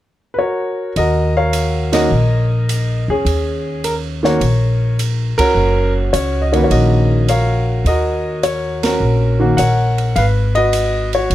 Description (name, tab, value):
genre	jazz piano trio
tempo	104 BPM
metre	4/4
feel	swing 69% on 8ths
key	Eb minor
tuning	A4 = 438 Hz
part	warm grand piano	melody	0.3-11.3 s	Eb3 to Gb5	-17 LUFS	equal	none
part	upright bass	bass	1.0-11.3 s	Gb1 to Fb2	-16 LUFS	equal	none
part	open jazz drum kit	drums	1.0-11.3 s	hi-hat, kick drum, ride cymbal, snare drum	-26 LUFS	right 3 dB	none
room	little or no reverb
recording	close, detailed microphones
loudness	-13 LUFS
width	side -14 dB against mid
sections	1.0-11.3 A section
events	band accent 1.8, 5.3, 8.7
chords	0.0 Gb; 1.0 Ebm7; 10.2 Abm7